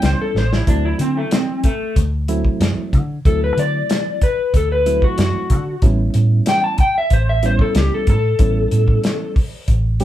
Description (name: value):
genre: straight-eighth soul blues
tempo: 93 BPM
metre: 4/4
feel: straight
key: unclear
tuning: A4 = 440 Hz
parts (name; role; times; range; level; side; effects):
- electric slide guitar; melody; 0.0-9.3 s; A3 to A5; -20 LUFS; left 2 dB; none
- reed electric piano; accompaniment; 0.0-10.0 s; F#3 to G4; -24 LUFS; right 3 dB; fast tremolo
- vintage muted fingered electric bass; bass; 0.0-10.0 s; A1 to D3; -18 LUFS; equal; none
- warm soul drum kit; drums; 0.0-10.0 s; hi-hat, kick drum, snare drum; -17 LUFS; equal; none
room: light reverb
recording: band playing live in one room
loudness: -15 LUFS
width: side -12 dB against mid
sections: 0.0-10.0 A section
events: electric slide guitar solo 0.0-10.0; drum fill 0.3-0.7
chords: 0.0 A9; 0.7 D9; 5.8 A9